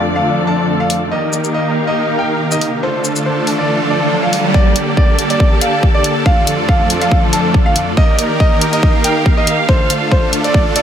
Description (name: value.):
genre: heavy wobble dubstep.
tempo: 140 BPM.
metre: 4/4.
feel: swing 54% on 16ths, half-time.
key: G minor.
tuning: A4 = 440 Hz.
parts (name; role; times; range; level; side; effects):
supersaw chords; sustained chords; 0.0-10.8 s; F2 to Bb4; -18 LUFS; right 1 dB; sidechain pumping, low-pass filter.
muted chamber string section; texture; 0.0-10.8 s; F3 to A5; -19 LUFS; left 1 dB; sidechain pumping.
clear concert grand piano; melody; 0.2-10.8 s; C5 to A5; -19 LUFS; right 1 dB; ping-pong delay.
electronic hi-hat and shaker; drums; 0.9-10.8 s; none; -18 LUFS; left 2 dB; high-pass filter on snare, high-pass filter on hats, high-pass filter on perc, high-pass filter on room.
riser; sound effects; 2.5-4.5 s; none; -21 LUFS; right 1 dB; none.
electronic kick drum; drums; 4.5-10.6 s; none; -12 LUFS; equal; none.
room: light reverb.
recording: none.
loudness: -11 LUFS.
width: side -9 dB against mid.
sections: 0.0-4.5 A section; 4.5-10.8 B section.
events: filter sweep on supersaw synth 0.0-4.5; riser 2.5-4.5; build-up 4.5-10.8.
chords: 0.0 Dm/F; 1.1 Eb; 2.8 Dm; 4.5 Gmadd9; 6.3 Dm/F; 8.0 Eb; 9.7 Dm.